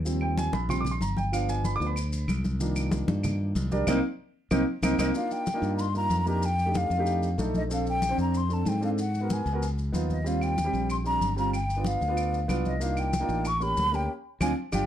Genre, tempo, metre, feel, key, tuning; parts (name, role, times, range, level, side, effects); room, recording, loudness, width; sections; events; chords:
Afro-Cuban jazz; 188 BPM; 4/4; straight; C minor; A4 = 445 Hz
modern bright fingered electric bass; bass; 0.0-14.8 s; G1 to Ab2; -29 LUFS; equal
warm concert grand piano; accompaniment; 0.1-14.8 s; Eb3 to D6; -30 LUFS; right 1 dB
congas; percussion; 0.1-14.8 s; -32 LUFS; left 2 dB
maracas; percussion; 0.1-14.8 s; -43 LUFS; left 3 dB
claves; percussion; 0.2-5.1, 10.4-14.8 s; -38 LUFS; right 4 dB
breathy concert flute; melody; 5.0-14.8 s; Eb5 to C#6; -30 LUFS; left 1 dB; plate reverb
light reverb; dark, warm production; -25 LUFS; side -10 dB against mid
0.0-5.2 A section; 5.2-14.9 B section
grand piano solo 0.0-5.2; band accent 3.9-5.2, 14.1-14.9; drum fill 14.4-14.9
0.1 Eb69; 1.3 G7; 2.6 Cm11; 5.2 F13sus4; 6.4 F13; 7.7 Bbmaj9; 9.0 Abm7; 9.6 Db9; 10.3 Eb69; 11.5 G7; 12.8 Cm11; 13.4 A7b9; 14.1 Dm7